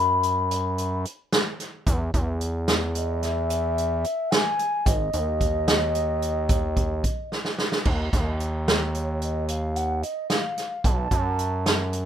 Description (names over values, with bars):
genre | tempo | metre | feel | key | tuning
progressive instrumental, band music in an uneven meter | 221 BPM (eighths) | 11/8 | straight | Eb minor | A4 = 440 Hz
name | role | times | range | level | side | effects
mellow hollow baroque flute | melody | 0.0-11.9 s | Db5 to B5 | -26 LUFS | left 1 dB | none
gritty driven synth bass | bass | 0.0-12.1 s | Ab1 to F#2 | -26 LUFS | equal | none
swinging big-band drum kit | drums | 0.2-12.1 s | crash cymbal, hi-hat, kick drum, snare drum | -24 LUFS | right 1 dB | none
tube shaker | percussion | 1.9-7.2 s | none | -45 LUFS | right 2 dB | none
room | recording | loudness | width
light reverb | rough home demo mix | -22 LUFS | side -10 dB against mid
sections
0.0-7.9 A section; 7.9-12.1 B section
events
drum fill 7.3-7.9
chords
0.0 B5; 1.9 N.C.; 4.9 Ab5; 7.9 Ebsus2; 10.8 B5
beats
0.24 0.51 0.79 1.06 1.33 1.60 | 1.88 2.15 2.42 2.69 2.96 3.23 3.51 3.78 4.05 4.32 4.59 | 4.87 5.14 5.41 5.68 5.96 6.23 6.50 6.77 7.04 7.31 7.59 | 7.86 8.13 8.40 8.67 8.95 9.22 9.49 9.76 10.03 10.30 10.58 | 10.85 11.12 11.39 11.66 11.93